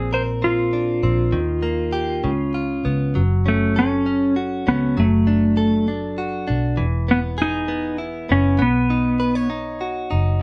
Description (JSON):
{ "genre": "six-eight pop ballad", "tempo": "66 BPM (dotted quarters)", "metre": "6/8", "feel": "straight", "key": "unclear", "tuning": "A4 = 439 Hz", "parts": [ { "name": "clean lap steel guitar", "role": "melody", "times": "0.0-9.5 s", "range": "A3 to C5", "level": "-22 LUFS", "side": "equal", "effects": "none" }, { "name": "direct-recorded clean electric guitar", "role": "accompaniment", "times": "0.0-10.4 s", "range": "Bb2 to C#5", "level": "-27 LUFS", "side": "equal", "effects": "none" }, { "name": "vintage muted fingered electric bass", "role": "bass", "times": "0.0-10.4 s", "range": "E1 to Eb2", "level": "-25 LUFS", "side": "equal", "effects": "none" } ], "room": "moderate studio reverb, RT60 0.5 s", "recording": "band playing live in one room", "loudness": "-20 LUFS", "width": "mono", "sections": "0.0-3.2 A section; 3.2-10.4 A section", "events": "none", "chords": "0.0 Bbadd9; 1.3 Eb; 2.2 Db7; 3.2 F#m; 5.0 D/F#; 6.8 E; 8.6 Badd9", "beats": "0.43 | 1.33 2.24 | 3.16 4.07 | 4.98 5.89 | 6.79 7.69 | 8.60 9.50 | 10.41" }